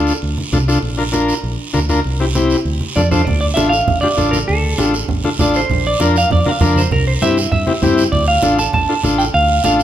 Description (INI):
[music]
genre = latin, cumbia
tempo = 197 BPM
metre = 4/4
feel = straight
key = D minor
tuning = A4 = 439 Hz
[part]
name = combo organ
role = accompaniment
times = 0.0-9.8 s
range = C4 to Bb4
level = -18 LUFS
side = left 2 dB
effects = none
[part]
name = fingered electric bass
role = bass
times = 0.0-9.8 s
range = A1 to G2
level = -19 LUFS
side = equal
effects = none
[part]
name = guiro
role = percussion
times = 0.1-9.8 s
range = none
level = -25 LUFS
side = right 5 dB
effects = none
[part]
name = congas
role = percussion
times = 0.4-9.8 s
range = none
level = -22 LUFS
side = right 2 dB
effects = none
[part]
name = clean electric guitar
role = melody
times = 3.0-9.8 s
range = A4 to A5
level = -17 LUFS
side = right 2 dB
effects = spring reverb
[sound]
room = wet large studio reverb, RT60 1.4 s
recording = minimal, uncompressed stereo recording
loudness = -13 LUFS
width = side -11 dB against mid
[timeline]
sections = 0.0-3.3 A section; 3.3-9.8 B section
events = drum fill 2.8-3.3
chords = 0.0 Dm; 0.8 Bb; 2.0 C; 2.7 Dm; 5.7 Bb; 6.9 C; 8.1 Dm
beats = 0.22 0.53 | 0.83 1.14 1.44 1.75 | 2.05 2.35 2.66 2.96 | 3.27 3.57 3.88 4.18 | 4.48 4.79 5.09 5.40 | 5.70 6.00 6.31 6.61 | 6.92 7.22 7.52 7.83 | 8.13 8.43 8.74 9.04 | 9.35 9.65